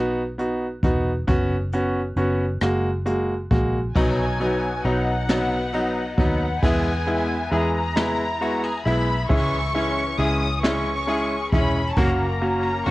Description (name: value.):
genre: six-eight pop ballad.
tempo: 45 BPM (dotted quarters).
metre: 6/8.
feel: straight.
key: B major.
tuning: A4 = 439 Hz.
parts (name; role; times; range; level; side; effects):
bright concert grand piano; accompaniment; 0.0-12.9 s; F#3 to F#4; -24 LUFS; equal; cassette tape.
vintage muted fingered electric bass; bass; 0.0-12.9 s; E1 to E2; -26 LUFS; equal; none.
jazz brush drum kit; drums; 0.4-12.9 s; crash cymbal, hi-hat, kick drum, ride cymbal, rim click, snare drum; -26 LUFS; equal; cassette tape.
dark studio violin section; second line; 3.9-12.9 s; F#5 to D#6; -27 LUFS; left 1 dB; cassette tape, analog delay.
direct-recorded clean electric guitar; arpeggios; 4.0-12.9 s; E3 to G#4; -29 LUFS; left 4 dB; ensemble chorus, cassette tape.
room: light reverb.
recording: home recording on cassette.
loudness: -20 LUFS.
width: side -18 dB against mid.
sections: 0.0-4.0 A section; 4.0-12.9 B section.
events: none.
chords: 0.0 B; 1.3 F#sus4; 2.6 F#add9; 4.0 B; 6.6 E; 9.3 C#m; 12.0 F#.